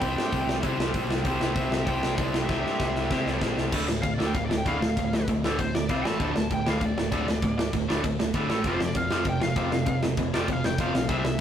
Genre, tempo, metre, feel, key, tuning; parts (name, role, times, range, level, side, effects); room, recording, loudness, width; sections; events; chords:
punk rock; 195 BPM; 4/4; straight; D minor; A4 = 438 Hz
smooth overdriven lead guitar; melody; 0.0-11.4 s; C5 to A5; -33 LUFS; left 1 dB; tape echo
biting overdriven guitar; riff; 0.0-11.4 s; D2 to C5; -27 LUFS; equal
modern bright picked electric bass; bass; 0.0-11.4 s; D1 to C3; -32 LUFS; equal
big rock drum kit; drums; 0.0-11.3 s; crash cymbal, hi-hat, kick drum, snare drum; -28 LUFS; equal
moderate stone room reverb, RT60 1.0 s; rough rehearsal-room recording, tube saturation; -24 LUFS; side -9 dB against mid
0.0-3.7 A section; 3.7-11.4 B section
drum fill 2.5-3.7; lead electric guitar solo 3.7-11.4
0.0 C; 3.7 Dm; 5.9 C5; 6.0 A5; 6.2 D5; 8.5 A5; 8.6 F5